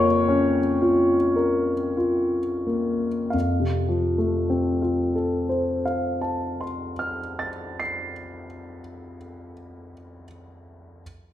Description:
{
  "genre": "classical, romantic nocturne for solo piano",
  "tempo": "27-40 BPM (dotted quarters)",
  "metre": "9/8",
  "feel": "rubato",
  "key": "F major",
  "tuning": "A4 = 440 Hz",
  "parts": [
    { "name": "warm concert grand piano", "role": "solo", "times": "0.0-11.0 s", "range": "F2 to C7", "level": "-22 LUFS", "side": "left 1 dB", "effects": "none" }
  ],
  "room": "wet recital hall reverb, RT60 1.5 s",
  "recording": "minimal, uncompressed stereo recording",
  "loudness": "-21 LUFS",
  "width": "side -12 dB against mid",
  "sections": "0.0-3.3 A section; 3.3-8.8 B section",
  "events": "slowing down 0.0-3.3",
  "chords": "0.0 Bbm/F; 3.3 F"
}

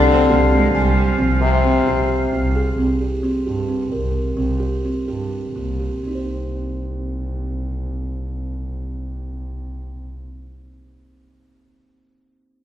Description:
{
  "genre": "contemporary instrumental, chamber music in an uneven meter",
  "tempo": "240-268 BPM (eighths)",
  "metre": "7/8",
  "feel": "straight",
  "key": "C minor",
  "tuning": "A4 = 440 Hz",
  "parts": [
    { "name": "rich cello", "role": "melody", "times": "0.0-2.1 s", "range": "F3 to C4", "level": "-23 LUFS", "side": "right 4 dB", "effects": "none" },
    { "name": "clear French horn", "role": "second line", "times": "0.0-2.5 s", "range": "C3 to D3", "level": "-19 LUFS", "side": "left 5 dB", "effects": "none" },
    { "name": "warm woodwind section", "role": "sustained chords", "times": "0.0-2.7 s", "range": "F4 to F5", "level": "-26 LUFS", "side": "equal", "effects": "none" },
    { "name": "buzzing kalimba", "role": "arpeggios", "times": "0.0-10.3 s", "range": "Bb3 to Ab5", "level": "-23 LUFS", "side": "right 2 dB", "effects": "none" },
    { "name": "warm double bass", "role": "bass", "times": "0.0-10.2 s", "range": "C2 to G2", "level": "-22 LUFS", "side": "right 1 dB", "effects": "none" }
  ],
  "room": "wet recital hall reverb, RT60 1.4 s",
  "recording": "heard from further back in the room",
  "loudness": "-18 LUFS",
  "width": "side -11 dB against mid",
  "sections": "0.0-2.8 A section; 2.8-6.0 B section; 6.0-9.4 C section",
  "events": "slowing down 2.8-6.0",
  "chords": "0.0 Fmadd9/C; 2.8 C5; 6.0 Cm"
}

